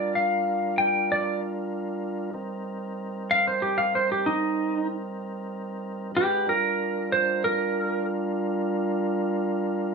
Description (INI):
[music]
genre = blues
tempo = 63 BPM (dotted quarters)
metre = 12/8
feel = straight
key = G minor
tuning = A4 = 441 Hz
[part]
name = clean lap steel guitar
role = melody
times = 0.0-8.1 s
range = Eb4 to G5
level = -23 LUFS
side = right 1 dB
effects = none
[part]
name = tonewheel organ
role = sustained chords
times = 0.0-9.9 s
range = G3 to F#5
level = -29 LUFS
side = right 1 dB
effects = chorus vibrato
[sound]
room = moderate studio reverb, RT60 0.5 s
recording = band playing live in one room, studio ambience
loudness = -24 LUFS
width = side -4 dB against mid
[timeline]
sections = 0.0-9.9 A section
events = none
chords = 0.0 Gm7; 2.3 Cm7; 6.1 Gm7